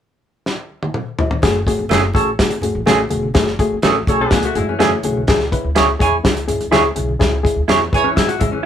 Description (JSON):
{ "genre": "uptempo 1960s-style soul", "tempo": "124 BPM", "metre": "4/4", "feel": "straight", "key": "F# minor", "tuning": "A4 = 440 Hz", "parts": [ { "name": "warm soul drum kit", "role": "drums", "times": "0.5-8.5 s", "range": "hi-hat, kick drum, snare drum, toms", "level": "-18 LUFS", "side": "equal", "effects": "none" }, { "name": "reed electric piano", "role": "accompaniment", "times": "1.4-8.6 s", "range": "G#3 to B4", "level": "-20 LUFS", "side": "left 3 dB", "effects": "fast tremolo" }, { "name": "upright bass", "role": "bass", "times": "1.4-8.7 s", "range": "E1 to C#3", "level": "-24 LUFS", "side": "equal", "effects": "none" }, { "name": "congas", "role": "percussion", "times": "1.4-8.5 s", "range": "none", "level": "-29 LUFS", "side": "right 1 dB", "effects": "none" }, { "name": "electric guitar through a small old amp", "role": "stabs", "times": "1.9-8.7 s", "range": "A3 to C#5", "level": "-16 LUFS", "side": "right 4 dB", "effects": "none" }, { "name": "mellow horn section", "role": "second line", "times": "2.1-8.1 s", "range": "C#4 to C#5", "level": "-18 LUFS", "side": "right 3 dB", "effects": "none" }, { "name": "vintage hollow-body jazz guitar", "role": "riff", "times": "4.2-8.7 s", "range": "E3 to A4", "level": "-21 LUFS", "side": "left 4 dB", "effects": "none" } ], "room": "light reverb", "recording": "band playing live in one room", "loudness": "-14 LUFS", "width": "side -9 dB against mid", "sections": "0.0-1.4 A section; 1.4-8.7 B section", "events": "drum fill 0.5-1.4", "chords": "0.0 N.C.; 1.4 F#madd9; 5.3 C#m" }